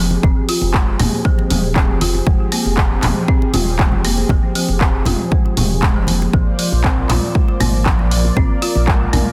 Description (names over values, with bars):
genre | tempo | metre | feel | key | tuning
afro house | 118 BPM | 4/4 | straight | F dorian | A4 = 440 Hz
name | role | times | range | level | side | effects
warm analog pad | sustained chords | 0.0-9.3 s | F3 to D5 | -27 LUFS | equal | chorus, sidechain pumping
folk marimba with medium hard mallets | arpeggios | 0.0-9.3 s | C3 to F4 | -24 LUFS | equal | sidechain pumping, digital delay
warm sub bass | bass | 0.0-9.2 s | Eb1 to Bb1 | -22 LUFS | equal | sidechain pumping
congas | percussion | 0.1-9.2 s | none | -25 LUFS | equal | none
electronic kick drum | drums | 0.2-9.0 s | none | -18 LUFS | equal | none
deep house drum kit | drums | 0.5-9.2 s | handclaps, hi-hat, toms | -23 LUFS | equal | none
room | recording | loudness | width
little or no reverb | dense, heavily limited modern master | -16 LUFS | mono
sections
0.0-9.3 A section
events
none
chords
0.0 Fm9; 6.3 Bb7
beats
| 0.23 0.74 1.25 1.76 | 2.27 2.78 3.29 3.79 | 4.30 4.81 5.32 5.83 | 6.34 6.84 7.35 7.86 | 8.37 8.88